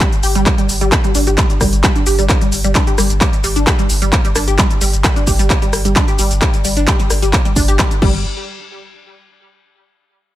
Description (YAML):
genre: driving peak-time techno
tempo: 131 BPM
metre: 4/4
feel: straight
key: unclear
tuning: A4 = 441 Hz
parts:
  - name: resonant blip pluck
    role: riff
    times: 0.0-8.2 s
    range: G3 to G4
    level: -19 LUFS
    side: equal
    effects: chorus, phaser, overdrive, sidechain pumping, ping-pong delay
  - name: electronic kick drum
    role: drums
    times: 0.0-8.1 s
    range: none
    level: -15 LUFS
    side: equal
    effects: none
  - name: techno drum kit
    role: drums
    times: 0.0-8.1 s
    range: crash cymbal, handclaps, hi-hat, rim click, shaker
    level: -18 LUFS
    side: equal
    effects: sidechain pumping on hats, sidechain pumping on perc, sidechain pumping on cymbals
  - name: saturated sub bass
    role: bass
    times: 0.2-8.2 s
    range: G1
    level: -17 LUFS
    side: equal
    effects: overdrive, sidechain pumping, low-pass filter
room: digital ambience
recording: none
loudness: -12 LUFS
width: side -14 dB against mid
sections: 0.0-8.2 A section; 8.2-10.1 B section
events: drop 0.0-8.2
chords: 0.0 G5; 8.0 N.C.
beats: 0.01 0.46 | 0.92 1.38 1.84 2.29 | 2.75 3.21 3.67 4.13 | 4.58 5.04 5.50 5.96 | 6.42 6.88 7.33 7.79